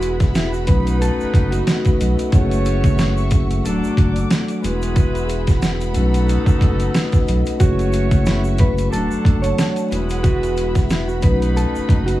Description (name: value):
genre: hip hop, boom-bap hip-hop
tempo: 91 BPM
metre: 4/4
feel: swing 57% on 16ths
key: unclear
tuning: A4 = 440 Hz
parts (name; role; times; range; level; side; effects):
- mellow electric guitar; melody; 0.0-2.3, 7.6-12.2 s; E4 to C#5; -25 LUFS; right 2 dB; high-pass filter, low-pass filter, analog delay
- vibraphone with soft mallets; accompaniment; 0.0-12.2 s; F#3 to F#5; -22 LUFS; left 2 dB; cassette tape, high-pass filter, low-pass filter, analog delay
- warm studio string section; sustained chords; 0.0-12.2 s; A3 to D6; -31 LUFS; right 1 dB; high-pass filter, low-pass filter
- clear saxophone section; stabs; 0.0-12.2 s; F#3 to C#5; -31 LUFS; right 2 dB; high-pass filter, low-pass filter, analog delay
- saturated sub bass; bass; 0.0-12.2 s; D1 to B1; -20 LUFS; equal; none
- boom bap sampler-style drum kit; drums; 0.0-12.2 s; hi-hat, kick drum, snare drum; -17 LUFS; equal; none
- tube shaker; percussion; 0.0-12.2 s; none; -42 LUFS; right 6 dB; none
room: little or no reverb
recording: echo-heavy mix, vinyl crackle, small room ambience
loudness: -15 LUFS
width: side -15 dB against mid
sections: 0.0-12.2 A section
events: none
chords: 0.0 Eadd9; 0.7 B7; 2.3 F#m7; 3.6 D; 4.6 Eadd9; 6.0 B7; 7.6 F#m7; 8.9 D; 9.9 Eadd9; 11.2 B7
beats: 0.35 1.01 1.67 | 2.33 2.99 3.65 4.31 | 4.97 5.62 6.29 6.94 | 7.60 8.26 8.92 9.58 | 10.24 10.90 11.56